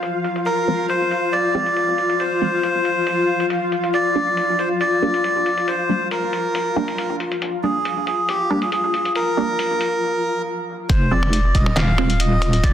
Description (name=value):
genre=deep dubstep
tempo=138 BPM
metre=4/4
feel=half-time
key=F dorian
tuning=A4 = 440 Hz
part: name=granular cloud pad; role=sustained chords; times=0.0-12.7 s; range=F4 to F5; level=-24 LUFS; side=left 3 dB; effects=built-in reverb
part: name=trip hop sampler-style drum kit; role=drums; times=0.0-12.7 s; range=finger snaps, handclaps, hi-hat, snare drum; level=-28 LUFS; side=left 1 dB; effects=low-pass filter on snare, low-pass filter on hats
part: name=melodica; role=melody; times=0.5-12.7 s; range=G4 to F5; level=-21 LUFS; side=equal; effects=dub echo
part: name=filtered dub chord stab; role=stabs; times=0.7-12.1 s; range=F3 to D4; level=-26 LUFS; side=right 2 dB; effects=phaser, dub echo
part: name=deep soft wobble bass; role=bass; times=10.9-12.7 s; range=Eb1 to F1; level=-18 LUFS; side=equal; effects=chorus
part: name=electronic kick drum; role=drums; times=10.9-12.7 s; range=none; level=-18 LUFS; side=equal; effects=none
room=moderate echo chamber reverb, RT60 1.4 s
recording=dense, heavily limited modern master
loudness=-17 LUFS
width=side -10 dB against mid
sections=0.0-10.9 A section; 10.9-12.7 B section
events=filter sweep on synth stab 0.0-10.9; break 10.0-10.9; drop 10.9-12.7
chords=0.0 Fm; 3.9 Gm; 10.9 Fm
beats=0.03 | 0.46 0.90 1.33 1.76 | 2.20 2.63 3.07 3.50 | 3.94 4.37 4.81 5.24 | 5.68 6.11 6.55 6.98 | 7.42 7.85 8.29 8.72 | 9.16 9.59 10.03 10.46 | 10.90 11.33 11.77 12.20 | 12.63